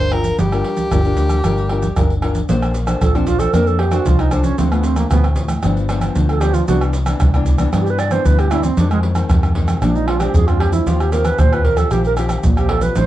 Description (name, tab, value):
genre	samba and choro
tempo	115 BPM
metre	4/4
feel	straight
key	unclear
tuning	A4 = 441 Hz
part	warm soprano saxophone	melody	0.0-2.2 s	G4 to C5	-21 LUFS	right 1 dB	none
part	nylon-string guitar	accompaniment	0.0-13.1 s	F2 to C5	-22 LUFS	left 4 dB	none
part	vintage muted fingered electric bass	bass	0.0-13.1 s	G1 to G2	-18 LUFS	left 1 dB	none
part	maracas, pandeiro, tamborim and surdo	percussion	0.0-13.1 s	none	-18 LUFS	right 2 dB	none
part	bright reedy alto flute	second line	3.0-13.1 s	Ab3 to D5	-20 LUFS	right 4 dB	none
room	light reverb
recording	dark, warm production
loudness	-14 LUFS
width	side -14 dB against mid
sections	0.0-2.5 A section; 2.5-13.1 B section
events	alto flute solo 2.5-13.1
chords	0.0 Gm7; 2.5 Bbmaj9; 4.6 Dm7; 5.6 G7; 6.7 Cmaj9; 8.8 Fm7; 9.8 Bb9; 10.9 Eb69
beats	| 0.39 0.92 1.44 1.97 | 2.49 3.02 3.54 4.06 | 4.59 5.11 5.64 6.16 | 6.68 7.21 7.73 8.25 | 8.78 9.30 9.82 10.35 | 10.87 11.39 11.92 12.44 | 12.96